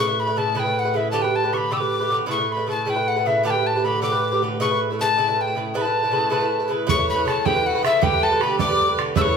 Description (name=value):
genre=celtic folk, Celtic jig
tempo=104 BPM (dotted quarters)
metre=6/8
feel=straight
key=A mixolydian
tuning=A4 = 438 Hz
part: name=breathy tin whistle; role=melody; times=0.0-9.4 s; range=E5 to E6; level=-21 LUFS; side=left 3 dB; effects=none
part: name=Irish bouzouki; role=accompaniment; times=0.0-9.4 s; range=C#3 to B4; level=-23 LUFS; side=right 3 dB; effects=none
part: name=muted cello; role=drone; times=0.0-6.9 s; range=A2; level=-32 LUFS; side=left 1 dB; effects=none
part: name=bright fiddle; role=second line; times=6.9-9.4 s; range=E4 to D5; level=-29 LUFS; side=left 5 dB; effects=none
part: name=bodhran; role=percussion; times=6.9-9.3 s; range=none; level=-24 LUFS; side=right 5 dB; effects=none
room=wet large studio reverb, RT60 1.1 s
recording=band playing live in one room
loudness=-18 LUFS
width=side -6 dB against mid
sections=0.0-6.9 A section; 6.9-9.4 A section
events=none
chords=0.0 Aadd9; 1.1 Gadd9; 2.3 Aadd9; 3.4 Gadd9; 4.6 Aadd9; 8.0 Gadd9